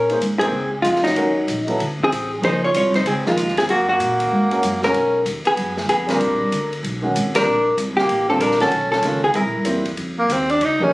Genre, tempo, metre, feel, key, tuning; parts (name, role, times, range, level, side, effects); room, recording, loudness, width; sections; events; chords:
jazz, small-group swing and bop; 191 BPM; 4/4; swing 63% on 8ths; Bb minor; A4 = 440 Hz
vintage hollow-body jazz guitar; melody; 0.0-9.7 s; Eb4 to Db5; -19 LUFS; equal
breathy tenor saxophone; second line; 0.0-10.9 s; Gb3 to F4; -23 LUFS; equal
upright bass; bass; 0.0-10.9 s; G1 to Bb2; -26 LUFS; equal
warm upright piano; accompaniment; 0.1-10.9 s; D3 to C5; -23 LUFS; right 1 dB
open jazz drum kit; drums; 0.1-10.7 s; hi-hat, kick drum, ride cymbal, snare drum; -29 LUFS; left 1 dB
light reverb; recorded on a phone in the room, studio ambience; -17 LUFS; side -20 dB against mid
0.0-10.0 A section
band accent 0.4, 7.3
0.0 Bbm9; 1.2 Ebm7; 1.8 D5; 2.4 Dbmaj9; 3.7 Gb; 5.0 Bmaj9; 6.2 Csus2; 6.8 Badd9; 7.5 Bbmaj9; 8.7 B9; 9.4 C7; 10.0 Fsus2